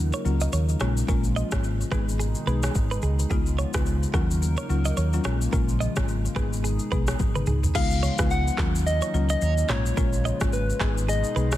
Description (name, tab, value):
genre	afrobeats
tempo	108 BPM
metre	4/4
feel	swing 58% on 16ths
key	G# dorian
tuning	A4 = 440 Hz
part	buzzing marimba with medium mallets	accompaniment	0.0-11.5 s	F#3 to G#4	-31 LUFS	left 6 dB	none
part	hollow soft pad	sustained chords	0.0-11.6 s	B2 to A#4	-35 LUFS	right 1 dB	chorus
part	hollow-body short-scale fingered electric bass	bass	0.0-11.6 s	G#1 to D#2	-25 LUFS	equal	none
part	direct-recorded clean electric guitar	riff	0.1-11.6 s	G#4 to D#5	-34 LUFS	right 6 dB	ping-pong delay
part	afro-pop drum kit	drums	0.1-11.6 s	crash cymbal, handclaps, kick drum, rim click, shaker, toms	-27 LUFS	equal	soft clipping on snare
part	soft struck synth lead	melody	7.8-11.6 s	B4 to F#5	-29 LUFS	left 1 dB	chorus, ping-pong delay
room	little or no reverb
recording	dense, heavily limited modern master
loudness	-22 LUFS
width	side -14 dB against mid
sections	0.0-7.8 A section; 7.8-11.6 B section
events	drum fill 7.2-7.8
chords	0.0 D#m7; 0.8 A#m7; 1.9 G#m; 3.3 C#7; 4.1 D#m7; 5.3 A#m7; 6.4 G#m; 7.8 C#7; 8.6 D#m7; 9.7 A#m7; 10.8 G#m